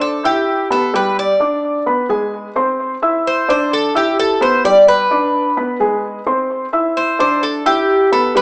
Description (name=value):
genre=latin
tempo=130 BPM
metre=4/4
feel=straight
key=unclear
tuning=A4 = 440 Hz
part: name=Cuban tres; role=melody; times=0.0-8.4 s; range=G4 to D5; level=-17 LUFS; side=equal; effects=none
part: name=dark grand piano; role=arpeggios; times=0.0-8.4 s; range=G3 to E6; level=-19 LUFS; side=equal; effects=tape echo
room=moderate large studio reverb, RT60 0.8 s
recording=small speaker sound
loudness=-16 LUFS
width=mono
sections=0.0-8.4 A section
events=none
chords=0.0 Dsus2; 0.9 G5; 1.9 G#m; 2.8 Cadd9; 3.7 Dsus2; 4.6 G; 5.6 G#m; 6.5 Cadd9; 7.4 Dsus2